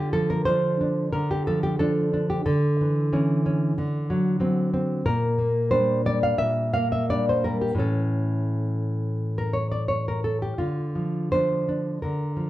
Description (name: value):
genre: romantic piece for solo classical guitar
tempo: 79-94 BPM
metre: 4/4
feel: rubato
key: D minor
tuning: A4 = 440 Hz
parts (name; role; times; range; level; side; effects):
- nylon-string guitar; solo; 0.0-12.5 s; A2 to F5; -22 LUFS; equal; none
room: moderate large studio reverb, RT60 1.1 s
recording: band playing live in one room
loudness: -22 LUFS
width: side -15 dB against mid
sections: 0.0-12.5 A section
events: none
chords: 0.0 Dm; 2.4 A/D; 3.8 D7; 5.0 Gm/Bb; 7.8 A; 10.6 Dm